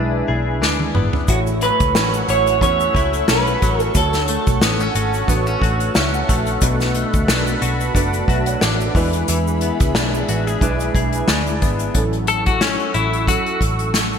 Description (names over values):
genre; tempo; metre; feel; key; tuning
indie pop, bedroom pop; 90 BPM; 4/4; swing 55% on 16ths; A major; A4 = 440 Hz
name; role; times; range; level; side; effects
direct-recorded clean electric guitar; accompaniment; 0.0-13.6 s; A2 to A4; -24 LUFS; left 5 dB; lush chorus, vibrato effect
warbly lo-fi synth keys; accompaniment; 0.0-14.2 s; F#3 to A5; -25 LUFS; right 4 dB; chorus
phased analog pad; sustained chords; 0.0-14.2 s; G#4 to E6; -26 LUFS; equal; phaser, chorus
vintage muted picked electric bass; bass; 0.0-14.1 s; F#1 to E2; -22 LUFS; equal; none
unplugged drum kit; drums; 0.6-14.2 s; hi-hat, kick drum, snare drum, toms; -20 LUFS; left 1 dB; gated reverb
electric guitar through a small old amp; melody; 1.3-6.3 s; F#4 to C#5; -20 LUFS; right 3 dB; lush chorus, ping-pong delay
tube shaker; percussion; 1.3-11.9 s; none; -34 LUFS; right 12 dB; none
room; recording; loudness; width
moderate plate reverb, RT60 3.6 s; bright 1980s-style digital production; -15 LUFS; side -7 dB against mid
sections
0.0-12.0 A section; 12.0-14.2 B section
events
drum fill 0.6-1.3; synth keys fill 5.6-6.6; clean electric guitar solo 12.0-14.2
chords
0.0 E7; 1.3 A6; 4.0 Dmaj7; 6.6 Bm7; 9.0 E7; 12.0 A6